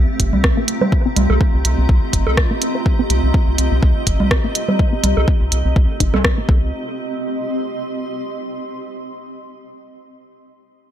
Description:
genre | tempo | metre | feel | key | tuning
minimal techno | 124 BPM | 4/4 | swing 55% on 16ths | C dorian | A4 = 439 Hz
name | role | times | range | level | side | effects
rubbery square bass | bass | 0.0-6.7 s | G1 to C2 | -18 LUFS | equal | sidechain pumping
granular cloud pad | texture | 0.0-8.6 s | C4 to C6 | -24 LUFS | equal | built-in reverb, sidechain pumping
swarming drone | texture | 0.0-6.8 s | A3 to F4 | -30 LUFS | right 3 dB | built-in reverb, sidechain pumping
electronic kick drum | drums | 0.2-6.6 s | none | -16 LUFS | equal | overdrive
minimal click drum kit | drums | 0.2-6.4 s | hi-hat, rim click | -20 LUFS | right 1 dB | overdrive
congas and bongos | percussion | 0.3-6.2 s | none | -21 LUFS | right 1 dB | overdrive, tape echo
hollow square pluck | riff | 0.4-6.7 s | G3 to C5 | -25 LUFS | equal | chorus, sidechain pumping, dub echo
room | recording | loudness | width
digital ambience | none | -15 LUFS | side -10 dB against mid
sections
0.0-6.7 A section; 6.7-8.7 B section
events
filter sweep on synth arpeggio sound 0.0-6.7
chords
0.0 Csus4; 6.5 C5; 6.7 Cm

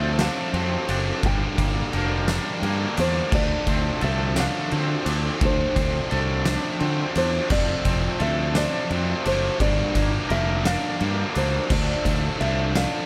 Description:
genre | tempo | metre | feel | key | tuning
post-rock | 57 BPM (dotted quarters) | 6/8 | straight | D minor | A4 = 445 Hz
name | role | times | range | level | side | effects
nylon-string guitar | melody | 0.0-13.1 s | C5 to G5 | -31 LUFS | equal | digital delay
rich studio string section | sustained chords | 0.0-13.1 s | F4 to A5 | -41 LUFS | equal | none
twangy electric guitar | arpeggios | 0.0-11.7 s | G2 to Bb4 | -34 LUFS | equal | tremolo, digital delay
distorted electric guitar | riff | 0.0-13.1 s | F2 to D4 | -33 LUFS | equal | overdrive
raw garage guitar | riff | 0.0-13.1 s | F2 to D4 | -33 LUFS | equal | overdrive
growling fingered electric bass | bass | 0.0-12.8 s | F1 to D3 | -28 LUFS | equal | overdrive
oversized low-tuned drum kit | drums | 0.2-12.9 s | crash cymbal, kick drum, ride cymbal, snare drum | -29 LUFS | equal | none
felt-muted upright piano | arpeggios | 11.7-13.1 s | D5 | -39 LUFS | equal | none
room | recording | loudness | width
small room ambience | none | -23 LUFS | mono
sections
0.0-13.1 A section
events
none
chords
0.0 F6; 1.2 Gm7; 3.3 Dm7; 7.5 F6; 9.6 Gm7; 11.7 Dm7

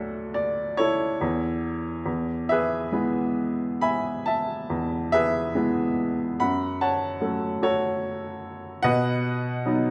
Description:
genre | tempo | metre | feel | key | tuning
classical, lyrical solo piano | 66-74 BPM | 3/4 | rubato | unclear | A4 = 440 Hz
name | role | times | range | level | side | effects
bright upright piano | solo | 0.0-9.9 s | D2 to B5 | -26 LUFS | equal | none
room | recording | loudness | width
wet recital hall reverb, RT60 1.4 s | none | -26 LUFS | mono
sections
0.0-9.9 A section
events
none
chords
0.0 D; 1.2 A/E; 2.1 E; 6.4 F#m; 8.8 B

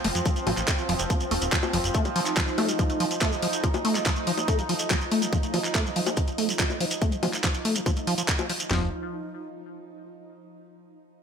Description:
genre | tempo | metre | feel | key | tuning
psychedelic trance | 142 BPM | 4/4 | straight | unclear | A4 = 442 Hz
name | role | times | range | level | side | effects
bubbling stepped-filter texture | sustained chords | 0.0-8.7 s | F3 to Eb4 | -31 LUFS | right 2 dB | chorus, built-in reverb, vintage 12-bit sampler grit, sidechain pumping
liquid acid bass | riff | 0.0-8.9 s | Eb3 to A3 | -29 LUFS | moving between left 5 dB and right 3 dB | phaser, auto-pan, cassette tape, sidechain pumping, tape echo
plucky analog bass | bass | 0.0-1.9, 8.7-8.9 s | Eb1 to F2 | -29 LUFS | equal | none
garage drum kit | drums | 0.0-8.7 s | bongos, handclaps, hi-hat | -29 LUFS | left 2 dB | studio reverb
shekere | percussion | 0.2-8.7 s | none | -34 LUFS | right 3 dB | none
garage drum kit | drums | 0.3-8.8 s | handclaps, kick drum, snare drum, toms | -26 LUFS | equal | studio reverb
room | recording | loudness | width
light reverb | none | -23 LUFS | side -7 dB against mid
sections
0.0-8.7 A section; 8.7-10.4 B section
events
none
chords
0.0 F5; 8.7 N.C.

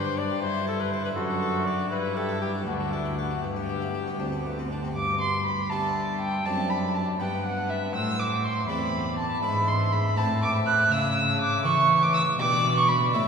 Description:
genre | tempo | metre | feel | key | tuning
classical, baroque-style sonata movement with continuo | 81 BPM (dotted quarters) | 6/8 | straight | G major | A4 = 440 Hz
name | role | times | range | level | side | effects
clear trumpet | melody | 0.0-13.3 s | E4 to E5 | -32 LUFS | left 5 dB | none
dark violin | second line | 0.0-13.1 s | B3 to F#6 | -26 LUFS | right 2 dB | none
harpsichord | accompaniment | 0.0-13.3 s | D2 to C#5 | -35 LUFS | left 1 dB | none
dark cello | bass | 0.0-13.3 s | D2 to G3 | -29 LUFS | equal | none
room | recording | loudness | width
wet cathedral reverb, RT60 5.4 s | recorded in a church or concert hall | -23 LUFS | side -6 dB against mid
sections
0.0-5.0 A section; 5.0-13.3 B section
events
none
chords
0.4 A5/G; 1.2 D/F#; 1.9 G5; 2.7 D5; 3.4 G; 6.5 D7/F#; 7.2 G; 7.9 Am; 9.4 E7/G#; 10.2 Am; 10.9 A/C#; 12.4 G/B

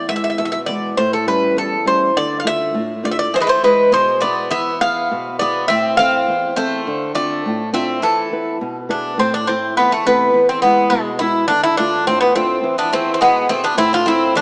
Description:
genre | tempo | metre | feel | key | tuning
greek folk, Greek bouzouki band | 103 BPM | 2/4 | straight | A harmonic minor | A4 = 442 Hz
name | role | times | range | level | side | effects
Greek bouzouki | melody | 0.0-14.4 s | G#3 to F5 | -18 LUFS | equal | none
flamenco guitar | accompaniment | 0.0-14.4 s | E2 to B4 | -25 LUFS | equal | none
Greek bouzouki | second line | 3.3-8.6, 12.8-14.4 s | E3 to D4 | -26 LUFS | equal | none
room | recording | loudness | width
moderate plate reverb, RT60 3.4 s | small speaker sound | -17 LUFS | mono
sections
0.0-9.2 A section; 9.2-14.4 B section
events
speeding up 0.0-14.4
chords
0.0 E; 1.0 A7; 2.2 Dm; 3.3 E; 5.7 Am; 6.9 Dm7; 8.0 E; 9.2 Am; 10.3 E; 11.5 Dm; 12.6 E; 13.8 Am

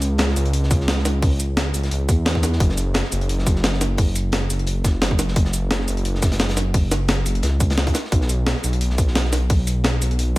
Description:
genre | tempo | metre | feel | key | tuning
liquid drum and bass | 174 BPM | 4/4 | swing 54% on 16ths | unclear | A4 = 438 Hz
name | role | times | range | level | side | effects
dark detuned saw bass | bass | 0.0-10.4 s | F#1 to E2 | -20 LUFS | equal | none
breakbeat sampler-style drum kit | drums | 0.0-10.4 s | hi-hat, shaker, snare drum | -23 LUFS | equal | none
crunchy breakbeat drum kit | drums | 0.0-10.3 s | hi-hat, snare drum | -32 LUFS | equal | high-pass filter on hats, high-pass filter on snare, high-pass filter on room
electronic kick drum | drums | 0.7-10.4 s | none | -18 LUFS | equal | overdrive
room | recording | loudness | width
little or no reverb | none | -18 LUFS | side -19 dB against mid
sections
0.0-10.4 A section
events
none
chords
none

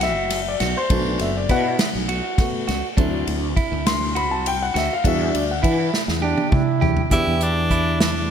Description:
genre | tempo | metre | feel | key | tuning
progressive instrumental, band music in an uneven meter | 203 BPM (eighths) | 7/8 | straight | E minor | A4 = 440 Hz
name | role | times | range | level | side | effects
dark baby grand piano | accompaniment | 0.0-8.3 s | E3 to C6 | -25 LUFS | left 3 dB | slapback echo
clean electric guitar | arpeggios | 0.0-8.1 s | D4 to G4 | -27 LUFS | right 5 dB | none
sustaining fretless electric bass | bass | 0.0-8.3 s | F#1 to E3 | -24 LUFS | equal | ensemble chorus
unplugged drum kit | drums | 0.0-8.1 s | hi-hat, kick drum, ride cymbal, snare drum, toms | -22 LUFS | equal | none
mellow trombone | second line | 6.2-7.1 s | D4 to E4 | -25 LUFS | right 5 dB | digital delay
edgy tenor saxophone | melody | 7.1-8.3 s | D4 to E4 | -22 LUFS | right 1 dB | slapback echo
room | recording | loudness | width
moderate lush hall reverb, RT60 2.0 s | big arena sound | -18 LUFS | side -8 dB against mid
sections
0.0-7.1 A section; 7.1-8.3 B section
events
grand piano solo 0.0-7.1; drum fill 5.9-7.1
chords
0.0 D13/F#; 3.0 D7; 5.0 Em7

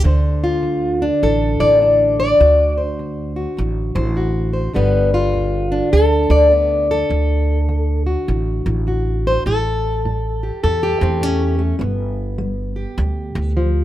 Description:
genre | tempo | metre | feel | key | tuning
acoustic country blues, solo or duo | 102 BPM | 4/4 | swing 63% on 8ths | D mixolydian | A4 = 439 Hz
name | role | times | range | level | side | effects
fingerpicked plugged-in steel-string acoustic guitar | melody | 0.0-13.8 s | D2 to D5 | -17 LUFS | left 1 dB | plate reverb
upright bass | bass | 0.0-13.8 s | G1 to E2 | -19 LUFS | right 1 dB | none
room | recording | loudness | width
light reverb | none | -15 LUFS | side -13 dB against mid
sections
0.1-13.8 A section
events
none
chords
0.1 D7; 4.8 G7; 7.1 D; 9.5 A7; 11.8 G

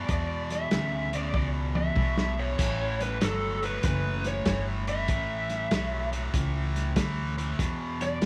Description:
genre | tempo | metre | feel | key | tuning
electric blues shuffle | 96 BPM | 4/4 | swing 66% on 8ths | unclear | A4 = 440 Hz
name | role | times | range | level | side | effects
lead guitar through a small cranked amp | melody | 0.0-8.3 s | A4 to E5 | -34 LUFS | equal | overdrive
cranked stack guitar | riff | 0.0-8.3 s | E2 to F#3 | -36 LUFS | equal | overdrive
upright bass | bass | 0.0-8.3 s | F#1 to A2 | -34 LUFS | equal | none
vintage drum kit | drums | 0.1-8.3 s | crash cymbal, hi-hat, kick drum, snare drum, toms | -32 LUFS | equal | none
room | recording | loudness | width
light reverb, small room ambience | none | -28 LUFS | mono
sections
0.0-8.3 A section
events
drum fill 1.3-2.6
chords
0.0 E7(no3); 2.6 A7; 7.6 E7(no3)

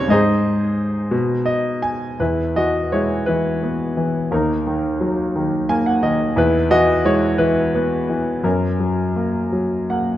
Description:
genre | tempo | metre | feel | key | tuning
classical, lyrical solo piano | 58 BPM (dotted quarters) | 6/8 | uneven beats, rubato | E lydian | A4 = 437 Hz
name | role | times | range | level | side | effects
clear grand piano | solo | 0.0-10.2 s | D#2 to G#5 | -17 LUFS | equal | none
room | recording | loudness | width
moderate recital hall reverb, RT60 1.4 s | dark, warm production | -17 LUFS | side -13 dB against mid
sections
0.0-2.2 A section; 2.2-10.2 B section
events
grand piano fill 1.1-2.2, 5.4-6.4, 9.5-10.2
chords
0.1 G#; 1.1 B; 2.2 Eadd9; 4.3 D#m; 6.4 E; 8.4 F#

